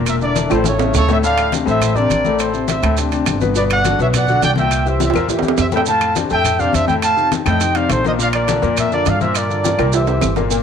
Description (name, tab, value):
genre	latin, salsa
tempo	207 BPM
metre	4/4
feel	straight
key	D minor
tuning	A4 = 440 Hz
part	warm grand piano	accompaniment	0.0-10.6 s	A2 to B4	-20 LUFS	left 8 dB	none
part	upright bass	bass	0.0-10.6 s	E1 to G2	-20 LUFS	right 2 dB	none
part	mellow trumpet section	melody	0.1-10.3 s	A4 to A5	-18 LUFS	right 1 dB	slapback echo
part	claves	percussion	0.1-10.4 s	none	-31 LUFS	left 10 dB	none
part	congas	percussion	0.1-10.6 s	none	-25 LUFS	left 7 dB	none
part	maracas	percussion	0.1-10.6 s	none	-28 LUFS	right 14 dB	none
part	timbales and agogo bells	percussion	0.1-10.6 s	none	-23 LUFS	right 13 dB	none
room	moderate echo chamber reverb, RT60 1.8 s, studio ambience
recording	1960s-style stereo with parts hard left and right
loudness	-14 LUFS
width	side -7 dB against mid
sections	0.0-1.2 A section; 1.2-10.5 B section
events	drum fill 0.5-1.2, 5.0-5.9, 9.6-10.5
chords	0.1 Bbmaj9#11/E; 0.6 A; 1.2 Dm7; 2.4 Am; 3.0 Gadd11; 3.5 Gmaj7; 4.7 C7; 5.9 F6; 7.0 F7; 8.2 Bb; 9.3 Gm7; 9.9 C7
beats	| 0.07 0.36 0.65 0.94 | 1.23 1.52 1.81 2.10 | 2.39 2.68 2.97 3.26 | 3.55 3.84 4.13 4.42 | 4.71 5.00 5.29 5.58 | 5.87 6.16 6.45 6.74 | 7.03 7.32 7.61 7.90 | 8.19 8.48 8.77 9.06 | 9.35 9.64 9.93 10.22 | 10.51